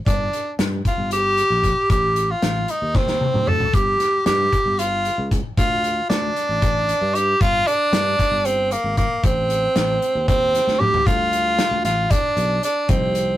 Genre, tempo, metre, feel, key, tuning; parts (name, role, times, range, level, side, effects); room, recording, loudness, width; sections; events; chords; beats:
progressive instrumental, band music in an uneven meter; 229 BPM (eighths); 7/8; straight; A4 = 438 Hz
edgy tenor saxophone; melody; 0.1-13.4 s; Bb3 to A4; -19 LUFS; right 1 dB
sustaining fretless electric bass; bass; 0.1-13.4 s; G1 to G2; -26 LUFS; equal
loose indie drum kit; drums; 0.1-13.3 s; hi-hat, kick drum, snare drum, toms; -22 LUFS; equal
archtop guitar, miked and amplified; accompaniment; 11.1-13.4 s; F3 to A4; -32 LUFS; left 1 dB
light reverb; rough rehearsal-room recording; -17 LUFS; side -13 dB against mid
0.0-11.1 A section; 11.1-13.4 B section
drum fill 3.0-3.7, 10.7-11.1
0.1 G5; 1.9 Adim; 3.7 Fsus2/G; 5.6 Dm; 7.4 G5; 9.2 Adim; 11.1 Dm7
| 0.07 0.33 0.59 0.85 1.11 1.38 1.64 | 1.90 2.17 2.43 2.69 2.95 3.21 3.48 | 3.74 4.00 4.26 4.53 4.79 5.05 5.31 | 5.58 5.84 6.10 6.36 6.62 6.88 7.15 | 7.41 7.67 7.93 8.19 8.45 8.72 8.98 | 9.24 9.50 9.76 10.02 10.28 10.54 10.80 | 11.07 11.33 11.59 11.85 12.11 12.37 12.63 | 12.89 13.15